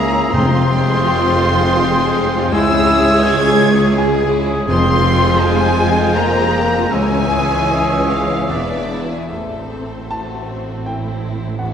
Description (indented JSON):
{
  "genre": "cinematic",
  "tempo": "72-84 BPM",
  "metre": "3/4",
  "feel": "rubato",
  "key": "F harmonic minor",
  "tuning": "A4 = 442 Hz",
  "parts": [
    { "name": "rich studio violin section", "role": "melody", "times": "0.0-11.7 s", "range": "A4 to Ab6", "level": "-23 LUFS", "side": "left 3 dB", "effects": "none" },
    { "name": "clear clarinet", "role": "second line", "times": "0.0-8.9 s", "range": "Ab4", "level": "-26 LUFS", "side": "left 1 dB", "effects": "none" },
    { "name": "clear oboe", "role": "second line", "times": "0.0-9.0 s", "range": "D5 to Ab5", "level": "-25 LUFS", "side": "right 1 dB", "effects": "none" },
    { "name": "mellow small flute group", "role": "second line", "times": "0.0-9.3 s", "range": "E5 to Ab6", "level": "-22 LUFS", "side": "equal", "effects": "none" },
    { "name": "rich studio violin section", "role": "second line", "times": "0.0-11.7 s", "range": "Ab3 to D5", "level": "-25 LUFS", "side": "left 1 dB", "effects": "none" },
    { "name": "clear grand piano", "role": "accompaniment", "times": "0.0-11.7 s", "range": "A1 to A5", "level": "-24 LUFS", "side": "left 2 dB", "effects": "none" },
    { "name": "rich studio viola section", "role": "accompaniment", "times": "0.0-11.7 s", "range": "Fb3 to Ab4", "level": "-23 LUFS", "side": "right 1 dB", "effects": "none" },
    { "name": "warm French horn section", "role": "sustained chords", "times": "0.0-9.3 s", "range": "Fb3 to Ab4", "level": "-21 LUFS", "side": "left 2 dB", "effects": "none" },
    { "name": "warm studio cello section", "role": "bass", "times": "0.0-11.7 s", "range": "Db2 to A2", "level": "-22 LUFS", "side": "right 2 dB", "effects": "none" },
    { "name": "warm studio double bass section", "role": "bass", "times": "0.0-11.7 s", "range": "E1 to Db2", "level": "-23 LUFS", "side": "right 2 dB", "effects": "none" },
    { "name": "timpani", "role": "percussion", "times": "0.3-1.4, 4.7-5.7 s", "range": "F2", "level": "-22 LUFS", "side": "left 1 dB", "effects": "none" }
  ],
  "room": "wet church reverb, RT60 2.6 s",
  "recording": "none",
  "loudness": "-13 LUFS",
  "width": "side -8 dB against mid",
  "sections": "0.0-9.3 A section; 9.3-11.7 B section",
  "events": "none",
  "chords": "0.3 Fmadd9; 2.5 Dbm; 4.7 Fmadd9; 6.9 Dbm; 8.5 E7; 9.3 Am"
}